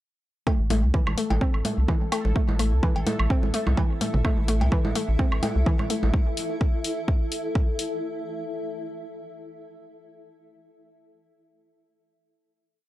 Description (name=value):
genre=minimal techno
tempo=127 BPM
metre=4/4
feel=swing 55% on 16ths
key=A minor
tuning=A4 = 440 Hz
part: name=hollow square pluck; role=riff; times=0.5-6.0 s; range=E3 to C4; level=-29 LUFS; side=left 1 dB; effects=chorus, sidechain pumping, analog delay
part: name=electronic kick drum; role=drums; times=0.5-7.7 s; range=none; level=-23 LUFS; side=equal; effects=overdrive
part: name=electronic cowbell, congas, woodblock and toms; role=percussion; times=0.5-6.1 s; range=none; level=-30 LUFS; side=right 2 dB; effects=tape echo
part: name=bubbling stepped-filter texture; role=texture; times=1.0-6.1 s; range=A4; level=-40 LUFS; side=left 1 dB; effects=chorus, built-in reverb, sidechain pumping
part: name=granular cloud pad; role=texture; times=2.0-8.0 s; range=E4 to E5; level=-33 LUFS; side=equal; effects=built-in reverb, sidechain pumping
part: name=rubbery square bass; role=bass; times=0.6-6.1 s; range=A1 to C2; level=-23 LUFS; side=equal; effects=sidechain pumping
part: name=electronic hi-hat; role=drums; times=0.7-7.9 s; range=none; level=-32 LUFS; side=left 4 dB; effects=overdrive
room=digital ambience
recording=dry, gritty hardware recording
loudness=-22 LUFS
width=side -15 dB against mid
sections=0.5-8.0 groove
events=fade-in on ambient pad 0.5-8.0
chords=0.5 A5